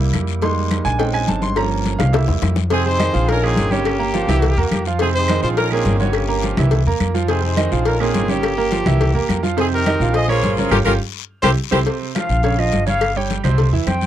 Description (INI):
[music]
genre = latin, salsa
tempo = 210 BPM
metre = 4/4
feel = straight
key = F minor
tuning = A4 = 440 Hz
[part]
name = bright grand piano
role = accompaniment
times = 0.0-14.1 s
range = Bb2 to C6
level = -22 LUFS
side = right 7 dB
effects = none
[part]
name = upright bass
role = bass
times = 0.0-14.1 s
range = G1 to F2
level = -19 LUFS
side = equal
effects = none
[part]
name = congas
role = percussion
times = 0.0-14.1 s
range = none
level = -24 LUFS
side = left 3 dB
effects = none
[part]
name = claves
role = percussion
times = 0.1-14.0 s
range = none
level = -32 LUFS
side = right 20 dB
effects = none
[part]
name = cowbell and bongos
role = percussion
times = 0.1-14.0 s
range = none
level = -25 LUFS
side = left 8 dB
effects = none
[part]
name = guiro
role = percussion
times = 0.1-14.1 s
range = none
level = -33 LUFS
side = left 26 dB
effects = none
[part]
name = clear horn section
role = melody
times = 2.7-11.8 s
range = Bb3 to Eb5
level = -20 LUFS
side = left 1 dB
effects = none
[part]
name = brilliant trombone section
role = second line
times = 10.7-11.8 s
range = C4 to G4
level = -23 LUFS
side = left 4 dB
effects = none
[part]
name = bright reedy concert flute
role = melody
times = 12.2-14.1 s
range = Db5 to G5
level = -21 LUFS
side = left 2 dB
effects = none
[sound]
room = little or no reverb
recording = dry, close 1970s-style studio recording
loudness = -15 LUFS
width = side -11 dB against mid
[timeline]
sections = 0.0-2.7 A section; 2.7-11.9 B section; 11.9-14.1 A section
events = grand piano solo 0.0-2.7; drum fill 2.0-2.7; band accent 10.7-11.9; flute solo 11.9-14.1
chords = 0.4 Fm11; 1.0 Bbm11; 1.6 Gm7b5; 2.1 C7; 2.7 Fm7; 3.3 Bbm11; 3.9 Gm7b5; 4.4 C7; 5.0 Fm7; 5.6 Bbm11; 6.1 Gm7b5; 6.7 C7; 7.3 Fm7; 7.9 Bbm11; 8.4 Gm7b5; 9.0 C7; 9.6 F9sus4; 10.2 Bbm9; 10.7 G7(b5, no3); 11.3 C7; 11.9 Fsus4; 12.4 Bbmadd11; 13.0 Dbmaj7#11/G